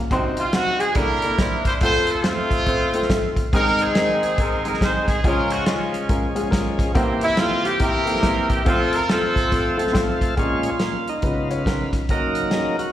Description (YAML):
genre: uptempo gospel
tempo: 140 BPM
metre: 4/4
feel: swing 63% on 8ths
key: unclear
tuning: A4 = 437 Hz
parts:
  - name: dark baby grand piano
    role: accompaniment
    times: 0.0-12.9 s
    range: F1 to F5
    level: -25 LUFS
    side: left 2 dB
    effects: slapback echo
  - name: warm soul drum kit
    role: drums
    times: 0.1-12.9 s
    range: hi-hat, kick drum, snare drum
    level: -23 LUFS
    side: equal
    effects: none
  - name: warm horn section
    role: melody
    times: 0.4-10.2 s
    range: Ab3 to C5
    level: -21 LUFS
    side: right 1 dB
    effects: slapback echo
  - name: bright tonewheel organ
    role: sustained chords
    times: 3.5-12.9 s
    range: Bb2 to A5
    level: -25 LUFS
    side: right 1 dB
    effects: overdrive, slow rotary speaker
room: light reverb, studio ambience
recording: live gig heard through the venue's PA, recital hall reverb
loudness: -18 LUFS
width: side -12 dB against mid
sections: 0.0-10.4 A section; 10.4-12.9 B section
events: tonewheel organ fill 9.5-10.4; tonewheel organ solo 10.4-12.9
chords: 0.1 Cdim; 1.0 C13; 1.8 F; 3.5 Ab; 5.2 Db; 7.0 C7; 8.7 F; 10.4 Bbm7; 11.2 Db9; 12.1 Gb6